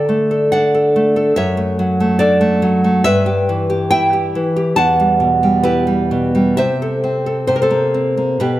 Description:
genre	romantic piece for solo classical guitar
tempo	62-72 BPM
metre	2/4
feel	rubato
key	E minor from 3.0 s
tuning	A4 = 440 Hz
part	nylon-string guitar	solo	0.0-8.6 s	E2 to A5	-13 LUFS	equal	none
room	moderate recital hall reverb, RT60 1.6 s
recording	none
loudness	-13 LUFS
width	side -15 dB against mid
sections	0.0-8.6 A section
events	none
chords	0.0 D; 1.4 D/F#; 3.0 Em/G; 4.8 Em; 6.6 Am/C

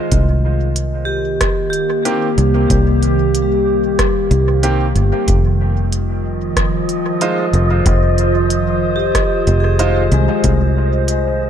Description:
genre	ambient dub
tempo	93 BPM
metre	4/4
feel	swing 55% on 16ths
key	F minor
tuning	A4 = 442 Hz
part	warbly tape-like pad	sustained chords	0.0-11.5 s	Eb3 to C5	-19 LUFS	right 1 dB	chorus, built-in reverb, phaser
part	vibraphone with medium mallets	arpeggios	0.0-11.5 s	G3 to Eb5	-22 LUFS	left 2 dB	dub echo
part	fingered electric bass	bass	0.1-11.5 s	F1 to C2	-16 LUFS	equal	none
part	electronic kick drum	drums	0.1-10.6 s	none	-19 LUFS	equal	none
part	organic electronic drum kit	drums	0.1-11.2 s	hi-hat, rim click	-22 LUFS	right 1 dB	dub echo
part	bright upright piano	stabs	2.1-10.0 s	Eb3 to C5	-24 LUFS	right 3 dB	dub echo
part	wind-like tuned noise texture	texture	6.2-11.5 s	Eb5	-26 LUFS	right 2 dB	built-in reverb
room	moderate concert hall reverb, RT60 2.3 s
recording	none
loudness	-13 LUFS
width	side -9 dB against mid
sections	0.0-11.5 A section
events	none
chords	0.1 Cm7; 5.3 Fm7; 10.4 Cm7

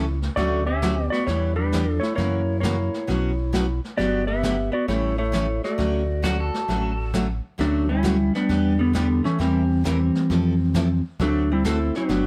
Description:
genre	country, western swing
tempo	133 BPM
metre	4/4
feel	swing 67% on 8ths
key	D major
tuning	A4 = 443 Hz
part	clean lap steel guitar	melody	0.0-12.3 s	D3 to E5	-26 LUFS	equal	none
part	vintage hollow-body jazz guitar	second line	0.0-12.3 s	G3 to C#4	-32 LUFS	equal	none
part	picked steel-string acoustic guitar	accompaniment	0.0-12.3 s	B2 to Bb4	-30 LUFS	equal	none
part	sub bass with octave	bass	0.0-12.3 s	G1 to F#2	-28 LUFS	equal	none
part	vintage brush drum kit	drums	0.2-12.3 s	brushed snare drum, hi-hat, kick drum, snare drum	-34 LUFS	equal	none
part	pedal steel guitar	second line	6.2-7.3 s	F#4 to A4	-31 LUFS	equal	none
room	light reverb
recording	none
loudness	-23 LUFS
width	mono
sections	0.0-7.6 A section; 7.6-12.3 A section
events	none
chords	0.4 Dmaj7; 1.3 Em7; 2.2 F#7; 3.1 Bsus2; 4.0 Gmaj7; 4.9 A7; 5.8 Dmaj7; 8.5 Em7; 9.4 C7/E; 10.3 Fmaj7; 11.2 D7

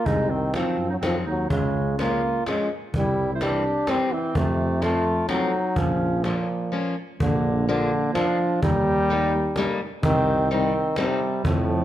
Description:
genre	alpine folk, alpine dance band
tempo	127 BPM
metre	3/4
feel	straight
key	Bb minor, Bb major from 7.2 s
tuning	A4 = 440 Hz
part	clear euphonium	melody	0.0-11.8 s	A2 to E4	-24 LUFS	equal	none
part	clear clarinet	second line	0.0-11.8 s	F3 to C5	-30 LUFS	right 5 dB	none
part	mellow tuba	bass	0.1-11.8 s	Bb1 to Gb2	-27 LUFS	equal	none
part	cajon	drums	0.1-11.6 s	none	-28 LUFS	equal	none
part	picked steel-string acoustic guitar	accompaniment	0.6-11.2 s	Eb3 to Eb4	-29 LUFS	left 4 dB	none
room	light reverb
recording	none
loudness	-21 LUFS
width	side -12 dB against mid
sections	0.0-7.2 A section; 7.2-11.8 B section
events	break 6.7-7.2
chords	0.1 Cdim; 1.5 Db; 2.9 C; 4.4 F7; 5.8 Bbm; 7.2 Bb; 8.6 Eb; 10.0 Cm

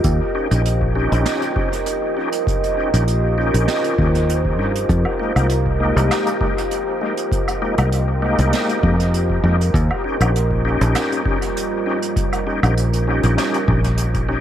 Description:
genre	ambient dub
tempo	99 BPM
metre	4/4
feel	swing 54% on 16ths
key	unclear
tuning	A4 = 439 Hz
part	deep dark ambient pad	sustained chords	0.0-14.4 s	G3 to Eb5	-22 LUFS	right 2 dB	chorus, built-in reverb
part	fingered electric bass	bass	0.0-14.4 s	Bb1 to G2	-17 LUFS	equal	none
part	electronic kick drum	drums	0.0-14.3 s	none	-24 LUFS	equal	none
part	vintage brush drum kit	drums	0.0-14.3 s	hi-hat, snare drum, woodblock	-28 LUFS	right 3 dB	dub echo
part	bright tonewheel organ	stabs	0.3-14.4 s	Ab3 to G4	-23 LUFS	left 2 dB	chorus vibrato, fast rotary speaker, dub echo
room	light reverb, small room reverb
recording	none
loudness	-16 LUFS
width	side -10 dB against mid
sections	0.0-14.4 A section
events	none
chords	0.0 Eb7; 4.9 Fm11; 9.7 Eb7

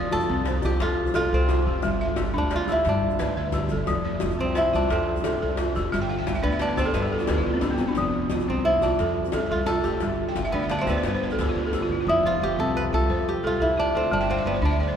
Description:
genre	west african traditional, West African string and xylophone music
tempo	117 BPM (dotted quarters)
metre	12/8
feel	straight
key	F lydian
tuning	A4 = 440 Hz
part	kora	melody	0.0-15.0 s	B3 to B4	-26 LUFS	equal	none
part	balafon	arpeggios	0.0-15.0 s	F3 to G5	-26 LUFS	equal	none
part	upright bass	bass	0.0-14.9 s	F1 to G2	-28 LUFS	equal	none
part	djembe	percussion	0.1-11.9 s	none	-31 LUFS	left 3 dB	none
room	wet cathedral reverb, RT60 5.8 s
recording	recorded in a church or concert hall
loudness	-22 LUFS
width	side -8 dB against mid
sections	0.0-12.1 A section; 12.1-15.0 B section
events	balafon fill 5.9-8.0, 10.3-12.1, 14.2-15.0; kora solo 12.1-15.0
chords	0.0 F; 1.8 G; 3.9 F; 5.9 G; 8.0 F; 10.0 G; 12.1 F; 14.1 G5

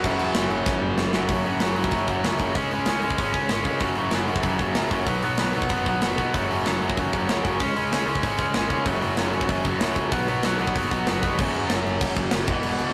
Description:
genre	punk rock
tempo	190 BPM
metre	4/4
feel	straight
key	unclear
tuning	A4 = 440 Hz
part	tight distorted guitar	riff	0.0-12.9 s	E2 to C#4	-27 LUFS	equal	distortion
part	tight distorted guitar	riff	0.0-11.4 s	F#2 to C#4	-32 LUFS	equal	distortion
part	fuzz picked electric bass	bass	0.0-12.9 s	E1 to C#3	-33 LUFS	equal	overdrive
part	tight metal drum kit	drums	0.0-12.9 s	crash cymbal, hi-hat, kick drum, snare drum	-29 LUFS	equal	none
room	light reverb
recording	rough rehearsal-room recording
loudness	-24 LUFS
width	mono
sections	0.0-1.3 A section; 1.3-11.4 B section; 11.4-12.9 A section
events	drum fill 0.7-1.3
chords	0.0 F#5; 2.6 C#5; 3.8 F#5; 5.1 B5; 6.3 F#5; 7.6 C#5; 8.9 F#5; 10.1 B5; 11.4 F#5

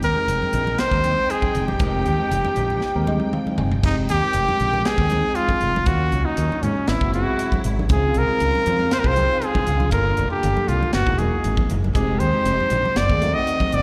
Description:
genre	electric jazz fusion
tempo	118 BPM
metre	4/4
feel	straight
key	F minor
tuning	A4 = 441 Hz
part	clear trumpet	melody	0.0-13.8 s	Db4 to D#5	-24 LUFS	equal	slapback echo
part	barky tine electric piano	accompaniment	0.0-13.8 s	Ab3 to Ab5	-31 LUFS	equal	analog chorus, slapback echo
part	warm studio string section	sustained chords	0.0-13.8 s	C3 to G5	-34 LUFS	equal	none
part	fingered electric bass	bass	0.0-13.8 s	Fb1 to Ab2	-25 LUFS	equal	none
part	crisp fusion drum kit	drums	0.0-13.8 s	crash cymbal, hi-hat, kick drum, snare drum, toms	-26 LUFS	equal	none
part	congas	percussion	0.4-13.8 s	none	-32 LUFS	equal	slapback echo
room	light reverb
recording	live gig heard through the venue's PA, recital hall reverb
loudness	-20 LUFS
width	mono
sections	0.0-3.8 A section; 3.8-13.8 A section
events	drum fill 2.8-3.8; tine electric piano fill 2.8-3.8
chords	0.0 Fm9; 5.9 Ebm9; 6.9 Ab7alt; 7.9 Dbmaj7; 9.9 Gm7; 10.9 Gb13; 12.0 Fm9; 13.0 F#dim7

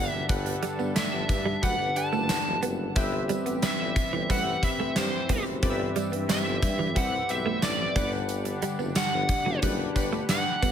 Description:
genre	1980s-style pop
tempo	90 BPM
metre	4/4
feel	straight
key	G major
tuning	A4 = 440 Hz
part	biting lead guitar	melody	0.0-10.7 s	C5 to A5	-30 LUFS	equal	overdrive, tape echo
part	glassy digital keys	accompaniment	0.0-10.7 s	G2 to B5	-33 LUFS	left 2 dB	chorus
part	chorused pulse-width pad	sustained chords	0.0-10.7 s	D3 to A4	-36 LUFS	left 2 dB	none
part	direct-recorded clean electric guitar	riff	0.0-10.7 s	E3 to B3	-34 LUFS	right 5 dB	lush chorus, tape echo
part	warm tuba	bass	0.0-10.7 s	E1 to G2	-33 LUFS	equal	none
part	gated 80s drum kit	drums	0.3-10.7 s	hi-hat, kick drum, snare drum, tambourine	-28 LUFS	equal	gated reverb
part	tambourine	percussion	0.3-10.7 s	none	-47 LUFS	right 9 dB	none
room	light reverb, studio reverb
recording	none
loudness	-24 LUFS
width	side -9 dB against mid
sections	0.0-10.7 A section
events	none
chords	0.0 Gmaj7; 3.0 Cmaj7/G; 8.0 Gmaj7

